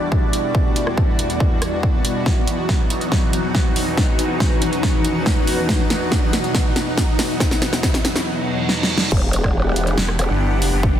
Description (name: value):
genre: heavy wobble dubstep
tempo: 140 BPM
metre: 4/4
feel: half-time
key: E minor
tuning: A4 = 441 Hz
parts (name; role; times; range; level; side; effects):
- supersaw pad; sustained chords; 0.0-11.0 s; E2 to F#5; -24 LUFS; equal; phaser, sidechain pumping
- riser and reverse cymbal; sound effects; 0.3-9.1 s; none; -29 LUFS; right 1 dB; none
- granular cloud pad; texture; 0.0-11.0 s; E3 to F#5; -26 LUFS; left 2 dB; built-in reverb, sidechain pumping
- electronic kick drum; drums; 0.1-10.9 s; none; -19 LUFS; equal; small room ambience
- dubstep drum kit; drums; 0.3-10.7 s; crash cymbal, hi-hat, rim click, snare drum; -22 LUFS; equal; small room ambience
- growl bass; bass; 9.1-10.3 s; E1; -20 LUFS; equal; chorus, overdrive
- snarling distorted saw bass; bass; 10.0-11.0 s; E1 to G1; -20 LUFS; equal; distortion, overdrive
room: light reverb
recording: dense, heavily limited modern master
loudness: -16 LUFS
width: side -10 dB against mid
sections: 0.0-9.1 A section; 9.1-11.0 B section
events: build-up 0.0-9.1; riser 0.3-8.3; drum fill 2.3-8.3, 8.7-9.1; reverse cymbal 8.3-9.1; drop 9.1-11.0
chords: 0.0 Em7; 2.3 B/E; 9.1 Em7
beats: 0.12 | 0.55 0.98 1.40 1.83 | 2.26 2.69 3.12 3.55 | 3.98 4.40 4.83 5.26 | 5.69 6.12 6.55 6.98 | 7.40 7.83 8.26 8.69 | 9.12 9.55 9.98 10.40 | 10.83